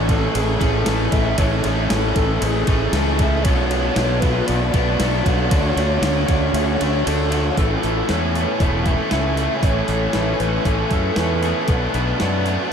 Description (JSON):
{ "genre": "rock, shoegaze and dream pop", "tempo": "117 BPM", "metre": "4/4", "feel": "straight", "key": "A major", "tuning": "A4 = 440 Hz", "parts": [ { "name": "string machine, cellos", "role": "sustained chords", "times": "0.0-12.7 s", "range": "A4 to C#6", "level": "-30 LUFS", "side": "equal", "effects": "none" }, { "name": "direct-recorded clean electric guitar", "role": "arpeggios", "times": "0.0-12.7 s", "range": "E3 to G#4", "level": "-31 LUFS", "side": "left 7 dB", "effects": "none" }, { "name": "overdriven electric guitar", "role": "riff", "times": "0.0-12.7 s", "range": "A2 to A4", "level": "-27 LUFS", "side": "left 8 dB", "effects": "wide subtle chorus" }, { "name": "raw garage guitar", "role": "riff", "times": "0.0-12.7 s", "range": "A2 to A4", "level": "-26 LUFS", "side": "right 7 dB", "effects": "overdrive, reverse reverb" }, { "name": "tight distorted guitar", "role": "riff", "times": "0.0-12.7 s", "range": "A2 to D4", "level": "-26 LUFS", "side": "equal", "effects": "distortion" }, { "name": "fuzz fingered electric bass", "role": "bass", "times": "0.0-12.6 s", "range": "E1 to F#2", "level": "-22 LUFS", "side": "equal", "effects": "overdrive" }, { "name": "reedy FM lead", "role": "melody", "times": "0.1-12.7 s", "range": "G#4 to E5", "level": "-26 LUFS", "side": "equal", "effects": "chorus, diffuse ambient delay" }, { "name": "clean 12-bit digital drum machine", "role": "drums", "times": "0.1-12.6 s", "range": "hi-hat, kick drum, ride cymbal, snare drum", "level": "-23 LUFS", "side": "equal", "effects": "overdrive" } ], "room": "moderate huge ambient reverb, RT60 6.9 s", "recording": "dreamy mix soaked in reverb", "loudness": "-16 LUFS", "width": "side -7 dB against mid", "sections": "0.0-7.6 A section; 7.6-12.7 B section", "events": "kick and snare drop out 6.5-7.6", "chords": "0.0 Amaj7; 3.4 Bm7; 5.5 Dmaj7; 7.6 Amaj7; 11.7 Bm7" }